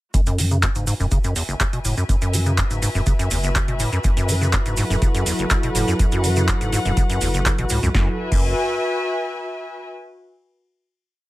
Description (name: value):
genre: acid house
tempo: 123 BPM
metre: 4/4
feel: straight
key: F# minor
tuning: A4 = 435 Hz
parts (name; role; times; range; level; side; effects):
- acid bass, square; riff; 0.1-8.5 s; F#1 to F#3; -23 LUFS; equal; vintage 12-bit sampler grit, digital delay
- saturated sub bass; bass; 0.1-8.5 s; E1 to F#2; -23 LUFS; equal; sidechain pumping
- electro analog drum machine; drums; 0.1-8.4 s; crash cymbal, handclaps, hi-hat, snare drum; -26 LUFS; right 1 dB; none
- electronic kick drum; drums; 0.1-8.4 s; none; -21 LUFS; equal; none
- cabasa; percussion; 0.1-7.9 s; none; -30 LUFS; right 2 dB; none
- muted studio string section; texture; 0.1-9.9 s; F#4 to G#5; -27 LUFS; left 2 dB; sidechain pumping
- warm analog pad; sustained chords; 4.0-8.2 s; F#3 to A4; -27 LUFS; right 2 dB; chorus, sidechain pumping
room: light reverb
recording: none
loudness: -18 LUFS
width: side -17 dB against mid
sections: 0.1-7.9 groove; 7.9-9.9 final chord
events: fade-in on string section 0.1-7.9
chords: 0.1 F#m7; 7.9 F#7(no3)